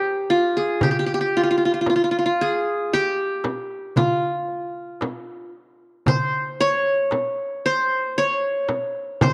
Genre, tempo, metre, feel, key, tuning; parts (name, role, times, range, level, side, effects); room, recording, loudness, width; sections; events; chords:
Arabic maqam ensemble; 114 BPM (eighths); 10/8; straight; A4 = 440 Hz
qanun; melody; 0.0-9.3 s; F4 to Db5; -23 LUFS; equal; cassette tape
darbuka; percussion; 0.8-9.3 s; -29 LUFS; equal
frame drum; percussion; 0.8-9.3 s; -26 LUFS; equal
moderate spring reverb, RT60 2.1 s; home recording on cassette; -22 LUFS; mono
0.0-9.3 A section